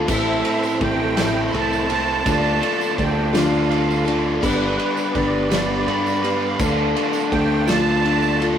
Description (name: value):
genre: folk rock and heartland rock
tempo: 55 BPM (dotted quarters)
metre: 6/8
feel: straight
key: D dorian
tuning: A4 = 440 Hz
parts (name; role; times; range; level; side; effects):
- picked plugged-in steel-string acoustic guitar; accompaniment; 0.0-8.6 s; A2 to B4; -23 LUFS; left 3 dB; none
- tonewheel organ; sustained chords; 0.0-8.6 s; C4 to D5; -31 LUFS; right 2 dB; none
- overdriven electric guitar; riff; 0.0-8.6 s; A2 to B4; -23 LUFS; equal; none
- fingered electric bass; bass; 0.0-8.6 s; G1 to G2; -25 LUFS; right 1 dB; none
- musette accordion; melody; 0.1-8.5 s; B4 to B5; -26 LUFS; right 5 dB; none
- loose indie drum kit; drums; 0.1-8.6 s; crash cymbal, kick drum, ride cymbal, snare drum; -25 LUFS; right 1 dB; none
- tambourine; percussion; 0.1-8.4 s; none; -38 LUFS; right 3 dB; none
room: moderate studio ambience, RT60 0.5 s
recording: rough rehearsal-room recording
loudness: -17 LUFS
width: side -9 dB against mid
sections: 0.0-8.6 A section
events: none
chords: 0.1 Am; 2.3 Dm; 4.4 G; 6.6 Dm